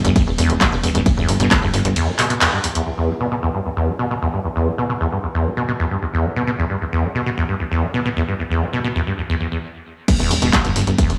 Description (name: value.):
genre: driving peak-time techno.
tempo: 133 BPM.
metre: 4/4.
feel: straight.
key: E minor.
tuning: A4 = 440 Hz.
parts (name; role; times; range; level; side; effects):
acid bass, saw; riff; 0.0-11.1 s; E2 to B2; -22 LUFS; equal; subtle chorus, sidechain pumping, dub echo.
tight sequencer bass; bass; 0.0-1.9, 10.2-11.2 s; E1 to G1; -21 LUFS; equal; sidechain pumping.
punchy analog drum machine; drums; 0.0-2.8, 10.1-11.2 s; crash cymbal, handclaps, hi-hat, ride cymbal; -23 LUFS; equal; sidechain pumping on hats, sidechain pumping on cymbals.
electronic kick drum; drums; 0.2-1.6, 10.1-11.1 s; none; -20 LUFS; equal; overdrive.
room: moderate digital room reverb, RT60 1.0 s.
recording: small room ambience.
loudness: -19 LUFS.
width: mono.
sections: 0.0-2.9 A section; 2.9-10.1 B section; 10.1-11.2 A section.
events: drop 0.0-2.9, 10.1-11.2; band accent 2.4; stop 9.6-10.1.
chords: 0.0 Em.